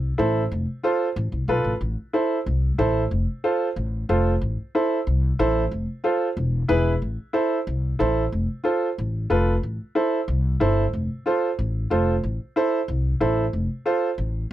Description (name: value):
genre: latin, cumbia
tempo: 184 BPM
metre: 4/4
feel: straight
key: A minor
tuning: A4 = 440 Hz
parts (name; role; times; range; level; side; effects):
- upright bass; bass; 0.0-14.4 s; E1 to C2; -23 LUFS; left 1 dB; none
- warm upright piano; accompaniment; 0.2-14.1 s; E4 to C5; -22 LUFS; right 1 dB; none
room: light reverb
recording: dry, close 1970s-style studio recording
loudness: -21 LUFS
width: side -13 dB against mid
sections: 0.0-7.0 A section; 7.0-14.5 B section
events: none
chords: 0.0 Am; 0.5 F; 1.8 Am; 3.1 F; 4.4 Am; 5.7 F; 6.4 E; 7.0 Am; 8.3 F; 9.6 Am; 10.9 F; 12.2 Am; 13.5 F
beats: 0.19 | 0.52 0.84 1.17 1.49 | 1.82 2.14 2.47 2.79 | 3.12 3.45 3.77 4.10 | 4.42 4.75 5.07 5.40 | 5.72 6.05 6.38 6.70 | 7.03 7.35 7.68 8.00 | 8.33 8.65 8.98 9.30 | 9.63 9.96 10.28 10.61 | 10.93 11.26 11.58 11.91 | 12.23 12.56 12.88 13.21 | 13.53 13.86 14.18